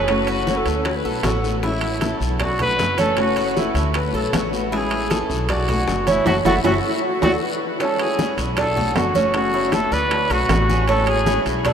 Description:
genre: latin, Cuban son and guajira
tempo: 156 BPM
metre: 4/4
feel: straight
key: unclear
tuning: A4 = 438 Hz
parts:
  - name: breathy trumpet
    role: melody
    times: 0.0-11.7 s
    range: E4 to B4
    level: -23 LUFS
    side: equal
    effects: none
  - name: flamenco guitar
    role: accompaniment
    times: 0.0-11.7 s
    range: C#3 to F#4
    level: -27 LUFS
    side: left 3 dB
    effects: none
  - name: Cuban tres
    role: arpeggios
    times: 0.0-11.7 s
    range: C#4 to D5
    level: -23 LUFS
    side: right 3 dB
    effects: none
  - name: upright bass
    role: bass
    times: 0.0-11.7 s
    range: F#1 to D2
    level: -25 LUFS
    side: equal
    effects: none
  - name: bongos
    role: percussion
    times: 0.1-11.7 s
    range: none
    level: -30 LUFS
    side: left 6 dB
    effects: none
  - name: congas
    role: percussion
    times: 0.1-11.7 s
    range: none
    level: -29 LUFS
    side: left 1 dB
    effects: none
  - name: guiro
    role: percussion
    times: 0.1-11.7 s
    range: none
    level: -35 LUFS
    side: left 4 dB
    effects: none
  - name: timbales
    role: percussion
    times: 0.1-11.7 s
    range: none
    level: -28 LUFS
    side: right 4 dB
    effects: none
  - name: breathy mellow jazz flute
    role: second line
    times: 0.5-1.5, 3.9-7.8 s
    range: E4 to C#5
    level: -31 LUFS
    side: left 1 dB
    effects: none
room: wet huge ambient reverb, RT60 7.4 s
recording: in a vast, echoing space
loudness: -17 LUFS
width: side -8 dB against mid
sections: 0.0-7.8 A section; 7.8-11.7 B section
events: band accent 6.3-7.8; drum fill 7.2-7.8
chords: 0.1 F#m7; 0.9 D6; 1.6 Amaj7; 2.4 Bm7; 3.2 F#m7; 3.9 D6; 4.7 Amaj7; 5.5 Bm7; 6.3 F#m7; 7.0 D6; 7.8 B13sus4; 8.6 Bm7; 9.3 F#m7; 10.1 D6; 10.9 Amaj7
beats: | 0.08 0.47 0.85 1.24 | 1.63 2.01 2.40 2.79 | 3.17 3.56 3.95 4.33 | 4.72 5.10 5.49 5.88 | 6.26 6.65 7.03 7.42 | 7.80 8.19 8.57 8.96 | 9.34 9.73 10.11 10.50 | 10.88 11.27 11.65

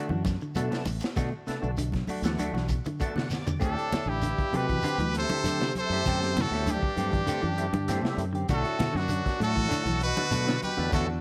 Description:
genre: afrobeat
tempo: 98 BPM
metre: 4/4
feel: straight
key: D mixolydian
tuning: A4 = 440 Hz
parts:
  - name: percussive tonewheel organ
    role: accompaniment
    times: 0.0-11.0 s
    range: F#3 to A5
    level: -41 LUFS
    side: equal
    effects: slow rotary speaker, overdrive, chorus vibrato
  - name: electric guitar at the edge of break-up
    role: arpeggios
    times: 0.0-10.9 s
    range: B2 to E3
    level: -38 LUFS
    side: equal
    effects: tremolo
  - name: semi-hollow electric guitar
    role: stabs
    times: 0.0-11.2 s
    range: A3 to G4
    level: -39 LUFS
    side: equal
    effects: none
  - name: fingered electric bass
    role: bass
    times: 0.1-11.2 s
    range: A1 to D3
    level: -34 LUFS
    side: equal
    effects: none
  - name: congas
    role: percussion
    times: 0.1-11.1 s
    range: none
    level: -38 LUFS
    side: equal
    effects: none
  - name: crunchy breakbeat drum kit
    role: drums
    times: 0.3-11.1 s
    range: hi-hat, kick drum, snare drum, toms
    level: -35 LUFS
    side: equal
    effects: none
  - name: shekere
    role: percussion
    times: 0.3-11.1 s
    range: none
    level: -41 LUFS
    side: equal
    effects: none
  - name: brilliant trumpet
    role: melody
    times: 3.6-11.1 s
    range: F#4 to C5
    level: -33 LUFS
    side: equal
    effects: none
  - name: clear trombone section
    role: second line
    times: 3.6-11.1 s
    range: F#2 to C3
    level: -40 LUFS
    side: equal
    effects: slapback echo
  - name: clear trumpet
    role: second line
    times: 3.6-11.1 s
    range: D4 to A4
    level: -38 LUFS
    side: equal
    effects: none
room: light reverb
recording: none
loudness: -28 LUFS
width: mono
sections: 0.0-3.6 A section; 3.6-11.2 B section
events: drum fill 2.4-3.6; tonewheel organ fill 2.7-3.6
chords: 0.0 Bm7; 3.6 D7sus4; 8.5 Bm7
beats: 0.56 | 1.17 1.78 2.39 3.00 | 3.61 4.22 4.83 5.44 | 6.05 6.66 7.27 7.88 | 8.49 9.10 9.71 10.32 | 10.93

